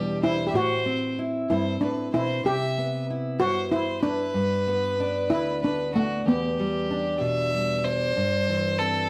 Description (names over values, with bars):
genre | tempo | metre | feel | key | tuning
acoustic folk duo or small band | 63 BPM (dotted quarters) | 6/8 | straight | unclear | A4 = 440 Hz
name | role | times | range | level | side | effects
steel pan | melody | 0.0-7.8 s | A3 to G4 | -28 LUFS | equal | none
clear fiddle | second line | 0.0-9.1 s | F#4 to E5 | -31 LUFS | equal | none
fingerpicked steel-string acoustic guitar | accompaniment | 0.0-9.1 s | D2 to E4 | -30 LUFS | equal | none
room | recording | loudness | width
wet studio reverb, RT60 0.6 s | heard from further back in the room | -25 LUFS | mono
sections
0.0-8.2 A section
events
none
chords
0.0 Em7; 0.5 Am; 2.4 Cmaj7; 4.4 G; 6.3 Em7; 8.2 C/G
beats
| 0.54 1.50 | 2.45 3.40 | 4.35 5.31 | 6.26 7.21 | 8.16